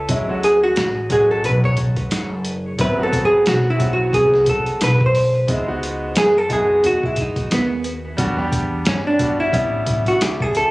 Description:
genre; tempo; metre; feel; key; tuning
hip hop, jazz-hop; 89 BPM; 4/4; swing 57% on 16ths; unclear; A4 = 438 Hz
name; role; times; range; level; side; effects
vintage hollow-body jazz guitar; melody; 0.0-10.7 s; B3 to C#5; -18 LUFS; equal; tape echo
upright bass; bass; 0.0-10.7 s; F#1 to G2; -23 LUFS; equal; none
bright concert grand piano; accompaniment; 0.1-10.7 s; F#3 to G4; -25 LUFS; equal; none
boom bap sampler-style drum kit; drums; 0.1-10.7 s; hi-hat, kick drum, snare drum; -23 LUFS; equal; none
room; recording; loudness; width
little or no reverb; recorded on a phone in the room, club reverb, compression; -16 LUFS; side -20 dB against mid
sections
0.0-5.5 A section; 5.5-10.7 A section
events
hollow-body jazz guitar solo 0.0-5.5, 5.5-10.7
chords
0.1 Dmaj7#11; 2.8 G#7#9; 5.5 C#m9; 8.2 Em9; 9.5 A7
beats
| 0.09 0.77 1.44 2.12 | 2.79 3.46 4.14 4.81 | 5.49 6.16 6.84 7.51 | 8.18 8.86 9.53 10.21

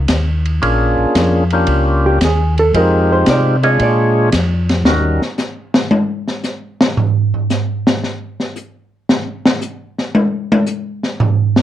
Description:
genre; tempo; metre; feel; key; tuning
soul jazz organ trio; 113 BPM; 4/4; swing 69% on 8ths; Bb mixolydian; A4 = 440 Hz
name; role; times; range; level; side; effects
mellow tonewheel organ; bass; 0.0-5.2 s; Bb1 to C3; -15 LUFS; equal; slow rotary speaker
open jazz drum kit; drums; 0.1-11.6 s; hi-hat, kick drum, ride cymbal, snare drum, toms; -15 LUFS; equal; none
percussive tonewheel organ; melody; 0.6-5.2 s; G3 to Db5; -15 LUFS; equal; slow rotary speaker
hollow-body jazz guitar; accompaniment; 2.1-4.7 s; G4 to Eb5; -18 LUFS; right 2 dB; none
room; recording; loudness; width
light reverb; worn, warbling old tape, cassette tape, warbly pitch drift; -13 LUFS; side -11 dB against mid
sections
0.0-11.6 A section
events
hollow-body jazz guitar solo 0.0-11.6; drum solo 4.9-11.6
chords
0.0 N.C.; 0.6 Bb7#9; 2.7 Fm7; 3.8 Bb7#9; 4.9 Eb7#9; 7.0 N.C.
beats
0.09 | 0.62 1.15 1.68 2.21 | 2.74 3.27 3.80 4.33 | 4.86 5.39 5.92 6.44 | 6.97 7.50 8.03 8.56 | 9.09 9.62 10.15 10.68 | 11.21

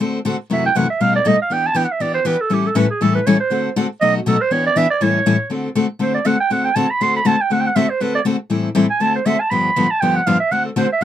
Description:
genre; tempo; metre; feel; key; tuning
jazz; 240 BPM; 4/4; swing 56% on 8ths; D mixolydian; A4 = 440 Hz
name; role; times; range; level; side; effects
picked steel-string acoustic guitar; accompaniment; 0.0-11.0 s; F#2 to A4; -17 LUFS; left 3 dB; none
growling clarinet; melody; 0.5-11.0 s; F#4 to C6; -17 LUFS; right 4 dB; none
room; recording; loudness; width
light reverb; dark, warm production; -15 LUFS; side -11 dB against mid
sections
0.0-5.5 A section; 5.5-11.0 A section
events
clarinet solo 0.0-11.0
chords
0.0 D7; 0.5 F#m7b5; 1.0 Baug7; 1.5 Em7; 2.5 A7; 3.5 D7; 4.0 B7; 4.5 Em7; 5.0 A7; 5.5 D7; 8.5 Am7; 9.0 D7; 9.5 G7; 10.5 D7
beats
0.00 0.25 | 0.50 0.75 1.00 1.25 | 1.50 1.75 2.00 2.25 | 2.50 2.75 3.00 3.25 | 3.50 3.75 4.00 4.25 | 4.50 4.75 5.00 5.25 | 5.50 5.75 6.00 6.25 | 6.50 6.75 7.00 7.25 | 7.50 7.75 8.00 8.25 | 8.50 8.75 9.00 9.25 | 9.50 9.75 10.00 10.25 | 10.50 10.75 11.00

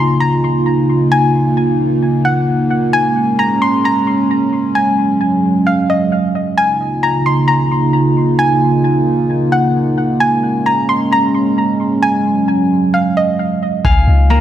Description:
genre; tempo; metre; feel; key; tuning
hip hop, atmospheric cloud-rap; 132 BPM; 4/4; half-time; Db major; A4 = 439 Hz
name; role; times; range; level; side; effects
soft round pluck; melody; 0.0-14.4 s; Eb5 to C6; -16 LUFS; left 1 dB; chorus, analog delay
dark analog pad; sustained chords; 0.0-14.4 s; Db3 to F4; -14 LUFS; right 1 dB; chorus, sidechain pumping
concert harp; arpeggios; 13.8-14.4 s; Bb3 to F5; -19 LUFS; left 6 dB; analog delay
clean 808-style bass; bass; 13.8-14.4 s; Db2; -10 LUFS; left 1 dB; none
electronic kick drum; drums; 13.8-14.0 s; none; -12 LUFS; equal; overdrive
room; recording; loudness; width
light reverb, digital ambience; echo-heavy mix; -12 LUFS; side -11 dB against mid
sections
0.0-14.4 A section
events
hi-hats muted 13.8-14.4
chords
0.0 Db69; 2.9 Bbm7; 4.8 Ab7sus4; 6.6 Db69; 10.2 Bbm7; 12.0 Ab7sus4; 13.8 Db69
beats
0.21 0.67 | 1.12 1.57 2.03 2.48 | 2.94 3.39 3.85 4.30 | 4.76 5.21 5.67 6.12 | 6.57 7.03 7.48 7.94 | 8.39 8.85 9.30 9.76 | 10.21 10.66 11.12 11.57 | 12.03 12.48 12.94 13.39 | 13.85 14.30

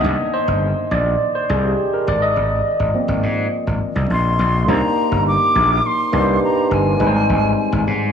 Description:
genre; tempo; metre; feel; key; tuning
polished 1980s jazz-funk pop; 103 BPM; 4/4; straight; C minor; A4 = 442 Hz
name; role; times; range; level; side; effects
barky tine electric piano; accompaniment; 0.0-8.1 s; Eb3 to Eb5; -18 LUFS; equal; wide subtle chorus
gritty slap bass; bass; 0.0-8.1 s; G1 to Ab2; -19 LUFS; equal; overdrive
hollow concert flute; melody; 4.1-7.9 s; Ab5 to D6; -19 LUFS; left 1 dB; none
room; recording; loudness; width
wet plate reverb, RT60 3.2 s; dreamy mix soaked in reverb; -15 LUFS; side -7 dB against mid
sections
0.0-4.7 A section; 4.7-8.1 B section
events
tine electric piano solo 0.0-4.7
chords
0.0 Cm7; 2.1 Ab69; 4.7 Cm9; 7.0 Abmaj7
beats
| 0.04 0.62 1.20 1.78 | 2.36 2.94 3.52 4.10 | 4.68 5.26 5.84 6.42 | 7.00 7.58

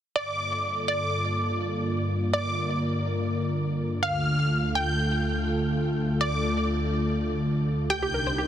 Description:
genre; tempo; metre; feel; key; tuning
house; 124 BPM; 4/4; straight; G minor; A4 = 439 Hz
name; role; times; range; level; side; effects
wide unison pluck; melody; 0.2-8.5 s; D5 to G5; -32 LUFS; right 1 dB; vintage 12-bit sampler grit, tape echo
soft supersaw; second line; 0.2-8.5 s; D6 to G6; -32 LUFS; equal; cassette tape, tape echo
warm analog pad; sustained chords; 0.2-8.5 s; C2 to Bb4; -26 LUFS; equal; chorus
analog pluck; arpeggios; 7.9-8.4 s; G4 to C5; -29 LUFS; right 2 dB; chorus, tape echo
room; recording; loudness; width
moderate huge ambient reverb, RT60 7.4 s; dense, heavily limited modern master; -24 LUFS; side -10 dB against mid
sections
0.2-8.5 A section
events
none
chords
0.2 Gm7; 4.0 Dm; 7.9 Cm7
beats
| 0.16 0.64 1.13 1.61 | 2.09 2.58 3.06 3.54 | 4.03 4.51 5.00 5.48 | 5.96 6.45 6.93 7.42 | 7.90 8.38

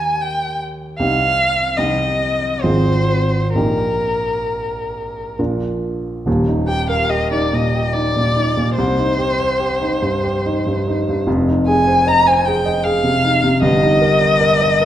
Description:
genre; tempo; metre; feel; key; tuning
classical, romantic duo for violin and grand piano; 63-78 BPM; 3/4; rubato; Eb major; A4 = 440 Hz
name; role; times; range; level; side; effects
rich violin; melody; 0.0-14.8 s; Bb4 to Bb5; -17 LUFS; left 1 dB; none
warm baby grand piano; accompaniment; 0.0-14.8 s; Eb1 to Eb5; -17 LUFS; right 1 dB; none
room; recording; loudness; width
wet recital hall reverb, RT60 1.4 s; dark, warm production; -14 LUFS; side -11 dB against mid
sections
0.0-6.3 A section; 6.3-14.8 B section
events
none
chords
0.0 Eb; 1.0 Cm; 2.6 Fm/Ab; 3.6 Eb/Bb; 5.4 Bb; 6.3 Eb; 8.8 Cm; 11.3 Fm7; 13.6 Eb/G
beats
0.23 | 1.00 1.78 2.63 | 3.55 4.48 5.38 | 6.27 7.10 7.94 | 8.76 9.59 10.44 | 11.27 12.07 12.85 | 13.63 14.41

